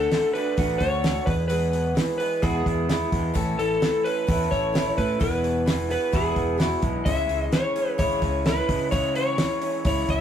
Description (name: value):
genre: folk rock and heartland rock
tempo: 129 BPM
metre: 4/4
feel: straight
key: E major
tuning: A4 = 440 Hz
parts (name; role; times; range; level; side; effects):
- electric slide guitar; melody; 0.0-10.2 s; G#4 to E5; -25 LUFS; equal; none
- picked steel-string acoustic guitar; accompaniment; 0.0-10.2 s; E2 to A4; -32 LUFS; left 3 dB; none
- electric guitar through a small old amp; riff; 0.0-10.2 s; E2 to F#4; -29 LUFS; right 1 dB; none
- fingered electric bass; bass; 0.0-10.2 s; E1 to C#3; -29 LUFS; equal; none
- damped 70s drum kit; drums; 0.1-10.2 s; hi-hat, kick drum, snare drum; -26 LUFS; equal; none
room: moderate studio reverb, RT60 0.6 s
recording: rough rehearsal-room recording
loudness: -21 LUFS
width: side -9 dB against mid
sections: 0.0-10.2 A section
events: none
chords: 0.0 D; 1.3 E; 3.4 A; 5.2 E; 7.1 C#m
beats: 0.12 0.58 1.04 | 1.50 1.96 2.43 2.89 | 3.35 3.81 4.28 4.74 | 5.21 5.67 6.13 6.60 | 7.06 7.53 7.99 8.45 | 8.92 9.38 9.85